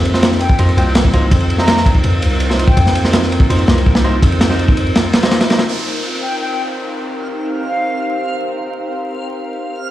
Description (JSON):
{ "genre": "drum and bass, jungle", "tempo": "165 BPM", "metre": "4/4", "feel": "straight", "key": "C minor", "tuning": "A4 = 440 Hz", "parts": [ { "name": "granular cloud pad", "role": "sustained chords", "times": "0.0-9.9 s", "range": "C4 to C5", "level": "-22 LUFS", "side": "equal", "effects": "built-in reverb" }, { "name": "long sustained 808-style bass", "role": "bass", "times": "0.0-4.9 s", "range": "C2 to F2", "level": "-15 LUFS", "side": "equal", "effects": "none" }, { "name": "bright grand piano", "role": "stabs", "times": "0.1-5.6 s", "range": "Bb3 to C5", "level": "-22 LUFS", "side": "right 1 dB", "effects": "low-pass filter, dub echo" }, { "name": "crunchy breakbeat drum kit", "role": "drums", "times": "0.1-5.7 s", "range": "kick drum, ride cymbal, snare drum", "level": "-14 LUFS", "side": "equal", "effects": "none" }, { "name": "mellow silver concert flute", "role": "melody", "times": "0.4-3.0, 6.2-8.2 s", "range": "F5 to Bb5", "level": "-24 LUFS", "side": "left 1 dB", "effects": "dub echo" }, { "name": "downlifter", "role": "sound effects", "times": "5.7-8.6 s", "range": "none", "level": "-27 LUFS", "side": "right 1 dB", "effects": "none" }, { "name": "backwards swelling texture", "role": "texture", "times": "6.7-9.9 s", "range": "F5", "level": "-27 LUFS", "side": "right 2 dB", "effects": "built-in reverb" } ], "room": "light reverb, small room ambience", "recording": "played on a big sound system in a bare room, large studio reverb, vinyl crackle", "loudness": "-12 LUFS", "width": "side -14 dB against mid", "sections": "0.0-5.7 A section; 5.7-9.9 B section", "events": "drop 0.0-5.7", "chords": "0.0 F7sus4; 5.7 Cm7" }